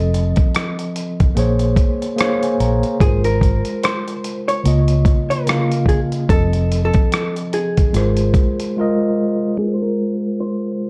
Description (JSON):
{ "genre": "lo-fi hip hop", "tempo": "73 BPM", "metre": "4/4", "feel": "swing 57% on 16ths", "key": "Ab major", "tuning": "A4 = 439 Hz", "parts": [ { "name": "vintage hollow-body jazz guitar", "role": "melody", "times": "0.0-10.9 s", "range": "Ab4 to Db5", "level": "-26 LUFS", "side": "equal", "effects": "low-pass filter, analog delay, plate reverb" }, { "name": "mellow tine electric piano", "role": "accompaniment", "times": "0.0-10.9 s", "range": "Db3 to Bb5", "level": "-22 LUFS", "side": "equal", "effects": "cassette tape, low-pass filter" }, { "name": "vintage muted fingered electric bass", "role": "bass", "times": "0.0-8.3 s", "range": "F1 to Db2", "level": "-20 LUFS", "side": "equal", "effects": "none" }, { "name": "dusty soul sampler-style drum kit", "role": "drums", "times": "0.1-8.8 s", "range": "hi-hat, kick drum, rim click", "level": "-20 LUFS", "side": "equal", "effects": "none" } ], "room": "light reverb", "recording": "dark, warm production", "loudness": "-18 LUFS", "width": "mono", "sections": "0.0-9.6 A section; 9.6-10.9 B section", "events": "tine electric piano fill 1.8-3.0; silent gap 8.8-9.6; filter sweep 9.6-10.9", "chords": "0.0 F7; 1.4 Bbm9; 3.0 Ab69; 4.6 Db69; 6.3 F7; 7.9 Ab69" }